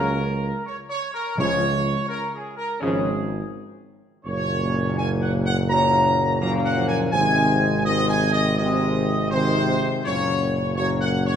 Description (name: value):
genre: classical, ceremonial fanfare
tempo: 83 BPM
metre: 4/4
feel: straight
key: Gb lydian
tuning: A4 = 440 Hz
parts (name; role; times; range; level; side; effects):
- mellow trumpet section; melody; 0.0-11.4 s; Ab4 to Bb5; -24 LUFS; equal; none
- clear trombone section; sustained chords; 0.0-11.3 s; Bb2 to Gb3; -27 LUFS; right 1 dB; none
- warm French horn section; sustained chords; 0.0-11.4 s; Ab3 to Db4; -28 LUFS; left 6 dB; none
- mellow tuba; bass; 0.0-11.4 s; Gb1 to Db2; -24 LUFS; right 2 dB; none
- timpani; percussion; 1.4-2.4 s; Db3; -30 LUFS; left 3 dB; none
room: wet scoring stage reverb, RT60 1.6 s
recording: none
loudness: -20 LUFS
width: side -8 dB against mid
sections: 0.0-11.4 A section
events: none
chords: 0.0 Gb; 1.4 Db; 4.3 Gb; 7.1 Ab; 10.0 Gb